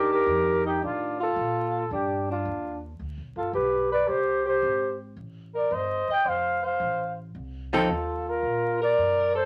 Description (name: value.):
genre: jazz.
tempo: 110 BPM.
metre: 4/4.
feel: swing 69% on 8ths.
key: unclear.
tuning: A4 = 442 Hz.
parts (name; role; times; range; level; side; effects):
breathy flugelhorn; melody; 0.0-9.5 s; F4 to G5; -29 LUFS; equal; none.
breathy alto saxophone; second line; 0.0-9.5 s; D4 to Eb5; -30 LUFS; equal; none.
archtop guitar, miked and amplified; accompaniment; 0.0-1.3, 7.7-7.9 s; Eb3 to A4; -30 LUFS; equal; none.
upright bass; bass; 0.0-9.5 s; F1 to Bb2; -39 LUFS; equal; none.
room: moderate studio reverb, RT60 0.6 s.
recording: vinyl crackle.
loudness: -26 LUFS.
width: mono.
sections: 0.0-9.5 A section.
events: none.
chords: 0.0 Ebmaj9#11; 1.9 G7; 4.1 C5; 6.3 F7; 8.4 Bb.